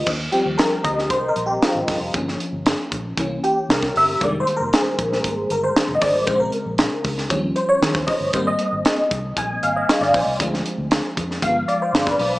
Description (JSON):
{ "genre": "polished 1980s jazz-funk pop", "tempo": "116 BPM", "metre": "4/4", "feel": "straight", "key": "unclear", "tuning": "A4 = 437 Hz", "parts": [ { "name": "FM electric piano", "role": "accompaniment", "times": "0.0-12.4 s", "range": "Db3 to Ab5", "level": "-20 LUFS", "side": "equal", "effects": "phaser, ensemble chorus" }, { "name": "vintage muted fingered electric bass", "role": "bass", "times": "0.0-12.4 s", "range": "F1 to Eb3", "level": "-29 LUFS", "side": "equal", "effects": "none" }, { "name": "crisp fusion drum kit", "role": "drums", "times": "0.1-12.3 s", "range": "crash cymbal, hi-hat, kick drum, snare drum", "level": "-21 LUFS", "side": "equal", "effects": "none" } ], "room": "light reverb, studio reverb", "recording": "small speaker sound", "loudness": "-18 LUFS", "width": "side -18 dB against mid", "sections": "0.1-12.4 A section", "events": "FM electric piano solo 0.1-12.4", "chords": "0.1 Eb69; 2.1 Gm7b5; 3.2 C7b9; 4.2 Fm11; 6.3 Bbm7; 7.3 Eb9; 8.3 Abmaj9; 10.4 Dm7b5; 11.4 G7b9" }